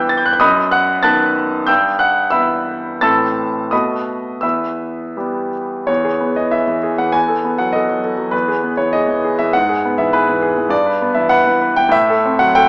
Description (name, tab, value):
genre	classical, romantic character piece for solo piano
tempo	80-104 BPM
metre	2/4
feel	rubato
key	E minor, E major from 5.9 s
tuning	A4 = 441 Hz
part	bright grand piano	solo	0.0-12.7 s	E2 to A6	-13 LUFS	equal	none
room	moderate large studio reverb, RT60 1.2 s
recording	small speaker sound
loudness	-13 LUFS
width	side -29 dB against mid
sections	0.0-5.9 A section; 5.9-12.7 B section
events	none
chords	0.4 B7/F#; 1.7 Em/G; 3.0 Am; 3.7 B7; 4.4 Em; 5.9 E; 7.1 B7/E; 8.3 E; 9.5 E/G#; 10.7 Em/G; 11.9 F#dim/A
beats	| 0.43 1.05 | 1.68 2.31 | 3.02 3.71 | 4.43 5.17 | 5.89 6.52 | 7.15 7.74 | 8.33 8.93 | 9.53 10.12 | 10.71 11.31 | 11.94 12.57